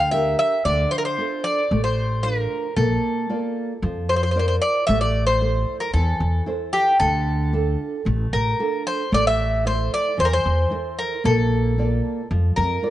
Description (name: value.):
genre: greek folk, Greek bouzouki band.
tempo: 113 BPM.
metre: 4/4.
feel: straight.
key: A phrygian.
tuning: A4 = 440 Hz.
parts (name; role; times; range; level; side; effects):
Greek bouzouki; melody; 0.0-12.9 s; G4 to F5; -22 LUFS; left 1 dB; none.
nylon-string guitar; accompaniment; 0.0-12.9 s; D3 to D5; -26 LUFS; right 2 dB; none.
upright bass; bass; 0.0-12.8 s; A1 to F2; -22 LUFS; equal; none.
room: light reverb.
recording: nothing above 10.4 kHz.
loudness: -19 LUFS.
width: side -14 dB against mid.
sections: 0.0-4.9 A section; 4.9-12.9 B section.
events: none.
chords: 0.0 Gm; 0.6 Dm; 2.8 Bb; 4.9 Am; 7.0 Dm; 9.1 Am; 11.2 Bb.